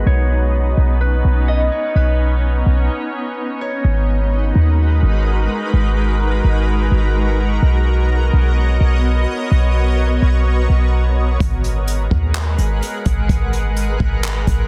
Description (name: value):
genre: hip hop, atmospheric cloud-rap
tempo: 127 BPM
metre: 4/4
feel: half-time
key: G# minor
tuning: A4 = 440 Hz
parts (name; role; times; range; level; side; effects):
- Celtic harp; melody; 0.0-5.5 s; G#4 to D#5; -27 LUFS; equal; low-pass filter, digital delay
- shimmering ambient pad; sustained chords; 0.0-14.7 s; G#3 to F#5; -24 LUFS; equal; chorus, built-in reverb, sidechain pumping, low-pass filter
- clean 808-style bass; bass; 0.0-14.7 s; G#1 to D#2; -17 LUFS; equal; none
- jazz brush drum kit; drums; 11.4-14.6 s; handclaps, hi-hat, kick drum; -22 LUFS; equal; none
room: small room ambience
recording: dense, heavily limited modern master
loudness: -17 LUFS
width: mono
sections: 0.0-3.8 A section; 3.8-14.7 B section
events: break 2.9-3.8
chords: 0.1 Badd9; 3.8 G#m9; 7.6 Bmaj9; 11.4 G#m9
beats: | 0.07 0.54 1.01 1.48 | 1.96 2.43 2.90 3.37 | 3.85 4.32 4.79 5.26 | 5.73 6.21 6.68 7.15 | 7.62 8.10 8.57 9.04 | 9.51 9.99 10.46 10.93 | 11.40 11.88 12.35 12.82 | 13.29 13.77 14.24